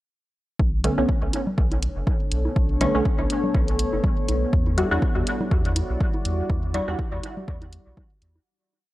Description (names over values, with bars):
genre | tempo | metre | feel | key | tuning
dub techno | 122 BPM | 4/4 | swing 56% on 16ths | B minor | A4 = 436 Hz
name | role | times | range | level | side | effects
deep dark ambient pad | sustained chords | 1.9-8.4 s | G3 to D5 | -29 LUFS | left 2 dB | chorus, built-in reverb, sidechain pumping
warm sub bass | bass | 0.6-8.4 s | F#1 to E2 | -26 LUFS | equal | sidechain pumping
electronic kick drum | drums | 0.6-8.1 s | none | -24 LUFS | equal | overdrive
bongos and congas | percussion | 0.6-8.4 s | none | -33 LUFS | equal | sidechain pumping on perc, dub echo
filtered dub chord stab | stabs | 0.8-7.0 s | D3 to F#4 | -27 LUFS | equal | chorus, phaser, sidechain pumping, dub echo
electronic hi-hat | drums | 0.8-8.3 s | none | -31 LUFS | equal | none
room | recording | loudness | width
light reverb, digital ambience | dry, gritty hardware recording, cassette tape | -20 LUFS | side -16 dB against mid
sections
0.6-8.5 groove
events
filter sweep on synth stab 0.6-8.5; fade-out 5.8-8.5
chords
0.6 Bm9; 4.5 Em9